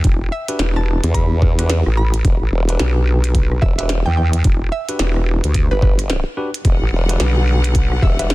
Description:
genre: glitch hop.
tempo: 109 BPM.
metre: 4/4.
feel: swing 61% on 16ths.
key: E minor.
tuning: A4 = 438 Hz.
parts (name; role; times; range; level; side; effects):
vowel-sweep wobble bass; bass; 0.0-8.0 s; E1 to E2; -16 LUFS; equal; chorus.
electronic kick drum; drums; 0.0-8.2 s; none; -16 LUFS; equal; overdrive, small room reverb.
glitchy drum kit; drums; 0.0-8.3 s; hi-hat, rim click, snare drum; -25 LUFS; equal; small room reverb.
woody wave-folded pluck; melody; 0.3-8.3 s; B4 to B5; -27 LUFS; right 2 dB; chorus, tape echo.
tine electric piano; stabs; 0.5-8.3 s; D4 to B4; -27 LUFS; equal; sidechain pumping, tape echo.
formant-sweep wobble bass; bass; 1.0-8.3 s; E1 to E2; -18 LUFS; equal; chorus, tube saturation.
clear symphonic string section; sustained chords; 6.7-8.3 s; D3 to F#5; -25 LUFS; left 1 dB; sidechain pumping.
room: digital ambience.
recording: dense, heavily limited modern master.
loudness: -14 LUFS.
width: side -19 dB against mid.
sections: 0.0-8.3 A section.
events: none.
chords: 0.0 Em9.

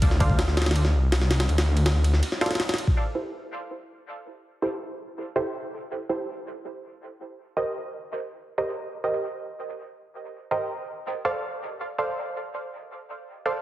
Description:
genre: drum and bass, jungle.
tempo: 163 BPM.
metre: 4/4.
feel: straight.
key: A phrygian.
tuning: A4 = 440 Hz.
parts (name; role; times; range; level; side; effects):
detuned saw bass; bass; 0.0-2.2 s; C2 to D2; -21 LUFS; equal; none.
jungle sampler-style drum kit; drums; 0.0-3.0 s; kick drum, ride cymbal, snare drum; -24 LUFS; equal; none.
filtered dub chord stab; stabs; 0.2-13.5 s; E4 to F5; -30 LUFS; right 2 dB; chorus, dub echo.
room: moderate plate reverb, RT60 1.7 s.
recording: heavily compressed radio sound.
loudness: -24 LUFS.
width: side -15 dB against mid.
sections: 0.0-3.0 A section; 3.0-13.6 B section.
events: none.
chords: 0.0 Dm7; 3.0 Am7; 7.4 Cm7; 11.1 Dm7.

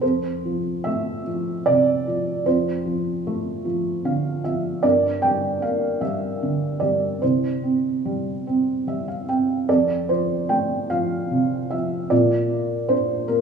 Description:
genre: classical, lyrical solo piano.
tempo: 50 BPM (dotted quarters).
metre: 6/8.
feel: rubato.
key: F major.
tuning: A4 = 440 Hz.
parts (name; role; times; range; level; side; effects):
felt-muted upright piano; solo; 0.0-13.4 s; F2 to G5; -20 LUFS; right 2 dB; none.
room: wet recital hall reverb, RT60 1.8 s.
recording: small room reverb.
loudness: -20 LUFS.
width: side -6 dB against mid.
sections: 0.0-13.4 A section.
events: felt piano fill 3.6-4.8, 8.4-9.7.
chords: 0.0 F; 4.8 Gm; 7.2 C; 9.7 F; 12.1 Bb.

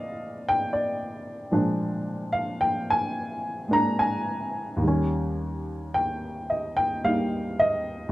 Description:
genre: solo jazz.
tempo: 73 BPM.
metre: 4/4.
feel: swing 68% on 8ths, rubato.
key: Bb mixolydian.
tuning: A4 = 441 Hz.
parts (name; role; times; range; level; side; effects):
warm upright piano; solo; 0.0-8.1 s; Eb2 to Bb5; -24 LUFS; equal; none.
room: light reverb.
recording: dark, warm production.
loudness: -24 LUFS.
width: side -16 dB against mid.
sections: 0.0-8.1 A section.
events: upright piano solo 0.0-8.1.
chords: 0.0 Bb7; 4.8 Eb7.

